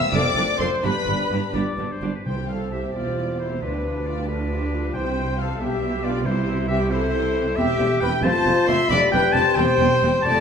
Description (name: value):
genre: quick classical-period movement for symphony orchestra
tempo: 90 BPM (dotted quarters)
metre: 6/8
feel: rubato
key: C major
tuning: A4 = 440 Hz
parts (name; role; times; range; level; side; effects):
- warm studio violin section; melody; 0.0-10.4 s; D4 to E6; -32 LUFS; left 3 dB; none
- mellow small flute group; second line; 0.0-10.4 s; D4 to E5; -28 LUFS; left 3 dB; none
- warm studio violin section; second line; 0.0-10.4 s; B4 to C6; -31 LUFS; left 4 dB; none
- mellow French horn section; sustained chords; 0.0-10.4 s; G3 to C5; -28 LUFS; left 4 dB; none
- warm trumpet section; stabs; 0.0-10.4 s; D4 to E5; -27 LUFS; equal; none
- rich chamber viola section; accompaniment; 0.1-10.4 s; E3 to A4; -32 LUFS; right 2 dB; none
- warm chamber double bass section; bass; 0.1-10.4 s; E1 to D2; -27 LUFS; right 3 dB; none
- warm studio cello section; bass; 0.1-10.4 s; C2 to C3; -28 LUFS; right 3 dB; none
- bright clarinet; second line; 1.5-10.4 s; B4 to C6; -26 LUFS; left 2 dB; none
- timpani; percussion; 2.3-6.9 s; C3; -32 LUFS; right 1 dB; none
room: wet recital hall reverb, RT60 1.6 s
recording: recorded in a church or concert hall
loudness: -19 LUFS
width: side -7 dB against mid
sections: 0.0-2.3 A section; 2.3-10.4 B section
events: none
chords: 0.1 Dm7; 0.8 G; 2.3 C; 2.9 C/E; 3.6 G7/D; 4.9 C; 5.6 G/B; 6.3 C; 8.2 F; 8.9 G5/F; 9.6 C/E